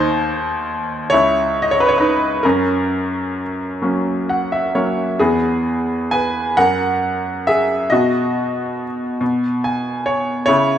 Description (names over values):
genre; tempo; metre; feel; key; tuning
classical, lyrical solo piano; 43-47 BPM (dotted quarters); 6/8; rubato; unclear; A4 = 440 Hz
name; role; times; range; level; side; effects
bright upright piano; solo; 0.0-10.8 s; C#2 to G#5; -16 LUFS; equal; none
room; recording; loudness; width
moderate recital hall reverb, RT60 1.4 s; minimal, uncompressed stereo recording; -16 LUFS; side -10 dB against mid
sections
0.0-10.8 A section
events
upright piano fill 3.8-5.2, 9.2-10.5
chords
0.0 N.C.; 1.1 C#m; 2.4 F#; 5.2 E; 6.6 F#; 7.9 B; 9.2 N.C.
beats
1.13 | 2.44 3.81 | 5.19 6.57 | 7.91 9.21 | 10.48